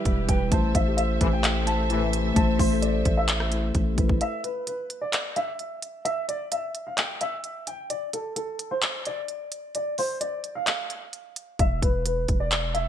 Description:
hip hop, trap; 130 BPM; 4/4; half-time; A4 = 441 Hz
dark baby grand piano; melody; 0.0-12.9 s; A4 to A5; -30 LUFS; equal; lush chorus, low-pass filter, digital delay
muted felt-like synth keys; accompaniment; 0.0-4.2 s; G3 to C5; -28 LUFS; left 2 dB; chorus, low-pass filter
dark symphonic string section; sustained chords; 0.0-4.2 s; E3 to E5; -33 LUFS; equal
long sustained 808-style bass; bass; 0.1-4.2, 11.6-12.9 s; E1 to A1; -27 LUFS; equal
trap drum kit; drums; 0.1-12.9 s; handclaps, hi-hat, kick drum, rim click; -25 LUFS; equal; gated reverb
dark brass ensemble; stabs; 1.2-2.3 s; A2 to E3; -31 LUFS; left 7 dB
small room ambience; bright 1980s-style digital production; -23 LUFS; side -10 dB against mid
0.0-4.2 A section; 4.2-12.9 B section
break 4.2-11.6
0.0 Em; 0.5 Am; 4.2 N.C.; 11.6 E7(no3)
0.06 | 0.52 0.98 1.44 1.90 | 2.36 2.83 3.29 3.75 | 4.21 4.67 5.13 5.59 | 6.05 6.52 6.98 7.44 | 7.90 8.36 8.82 9.29 | 9.75 10.21 10.67 11.13 | 11.59 12.05 12.52

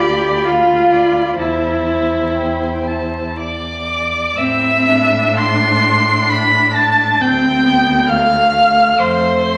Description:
classical, slow romantic movement for string quartet; 56-70 BPM; 3/4; rubato; A minor; A4 = 440 Hz
warm violin; melody; 0.0-9.6 s; G5 to C7; -20 LUFS; equal
warm violin; second line; 0.0-9.6 s; C5 to C6; -19 LUFS; equal
rich viola; accompaniment; 0.0-9.6 s; A3 to G4; -20 LUFS; equal
warm cello; bass; 0.0-9.6 s; D2 to A2; -25 LUFS; equal
wet recital hall reverb, RT60 1.4 s; vinyl crackle; -14 LUFS; mono
0.0-4.4 A section; 4.4-9.6 B section
0.0 Bdim/D; 1.4 Am/E; 4.4 Am; 7.2 Dm7
0.46 | 1.40 2.37 3.40 | 4.37 5.39 6.30 | 7.20 8.09 8.99

